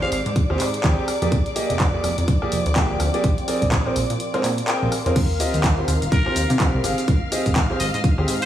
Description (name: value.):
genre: piano house.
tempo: 125 BPM.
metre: 4/4.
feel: swing 59% on 16ths.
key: Eb major.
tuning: A4 = 440 Hz.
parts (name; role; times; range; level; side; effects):
trumpet with straight mute; melody; 0.0-0.2, 6.1-8.5 s; Bb4 to F5; -29 LUFS; left 1 dB; dub echo.
dark symphonic string section; sustained chords; 0.0-8.5 s; D5 to F6; -30 LUFS; left 2 dB; sidechain pumping.
clear concert grand piano; riff; 0.0-8.3 s; Bb3 to G5; -26 LUFS; right 1 dB; vintage 12-bit sampler grit, sidechain pumping, dub echo.
plucky analog bass; bass; 0.0-8.5 s; Eb1 to C3; -23 LUFS; equal; sidechain pumping.
deep dark ambient pad; texture; 0.0-8.5 s; Eb4 to C6; -30 LUFS; right 1 dB; chorus, built-in reverb, sidechain pumping.
punchy analog drum machine; drums; 0.1-8.5 s; crash cymbal, handclaps, hi-hat, rim click, shaker; -27 LUFS; equal; none.
electronic kick drum; drums; 0.4-8.2 s; none; -20 LUFS; equal; none.
sub drop; sound effects; 5.2-7.1 s; none; -30 LUFS; equal; none.
room: light reverb.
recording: small room ambience.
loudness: -18 LUFS.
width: side -11 dB against mid.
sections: 0.0-5.2 A section; 5.2-8.5 B section.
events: kick drops out 4.2-5.2; drop 5.2-8.5; impact 5.2-7.1.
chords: 0.0 Abmaj7; 1.1 Fm11; 3.2 Bb9; 5.2 Eb69; 6.8 Abmaj7.